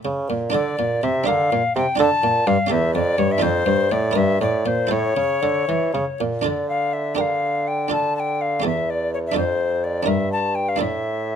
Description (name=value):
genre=classical, baroque-style sonata movement with continuo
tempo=82 BPM (dotted quarters)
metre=6/8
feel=rubato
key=D minor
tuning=A4 = 440 Hz
part: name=buff-stop harpsichord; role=accompaniment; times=0.0-11.4 s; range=E2 to Bb4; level=-24 LUFS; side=right 2 dB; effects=none
part: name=clear bassoon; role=bass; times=0.1-11.4 s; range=E2 to E3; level=-23 LUFS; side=right 2 dB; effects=none
part: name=alto recorder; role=melody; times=0.5-11.4 s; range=C5 to A5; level=-22 LUFS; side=left 4 dB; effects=none
room=light reverb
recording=none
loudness=-18 LUFS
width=side -8 dB against mid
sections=0.0-6.5 A section; 6.5-11.4 A section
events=none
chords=0.0 A; 0.5 Dm; 1.3 Gm; 2.0 Dm; 2.7 A7/E; 3.4 Dm/F; 4.2 Edim/G; 4.9 A; 6.5 Dm; 7.2 Gm/D; 7.9 Dm; 8.6 A7/E; 9.4 Dm/F; 10.1 Em7b5/G; 10.8 Asus4